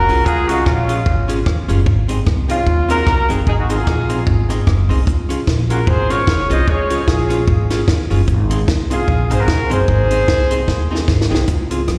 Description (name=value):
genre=ska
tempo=150 BPM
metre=4/4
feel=swing 57% on 8ths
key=unclear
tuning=A4 = 440 Hz
part: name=mellow horn section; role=melody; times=0.0-11.1 s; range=Db4 to Eb5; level=-21 LUFS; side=equal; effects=dub echo, slapback echo
part: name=upright bass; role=bass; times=0.0-12.0 s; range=F1 to F2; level=-20 LUFS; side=equal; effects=none
part: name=archtop guitar, miked and amplified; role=accompaniment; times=0.1-11.9 s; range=C4 to Ab4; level=-26 LUFS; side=equal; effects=slapback echo
part: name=compact cocktail drum kit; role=drums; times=0.1-12.0 s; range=hi-hat, kick drum, rim click, snare drum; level=-20 LUFS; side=equal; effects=none
room=light reverb, studio reverb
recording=live gig heard through the venue's PA, recital hall reverb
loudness=-16 LUFS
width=mono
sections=0.0-11.5 A section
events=drum fill 10.7-11.5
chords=0.0 Db; 1.9 Ab; 5.1 Db; 8.3 Ab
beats=| 0.26 0.66 1.06 1.47 | 1.87 2.27 2.67 3.07 | 3.47 3.87 4.27 4.67 | 5.07 5.47 5.87 6.27 | 6.67 7.08 7.48 7.88 | 8.28 8.68 9.08 9.48 | 9.88 10.28 10.68 11.08 | 11.48 11.88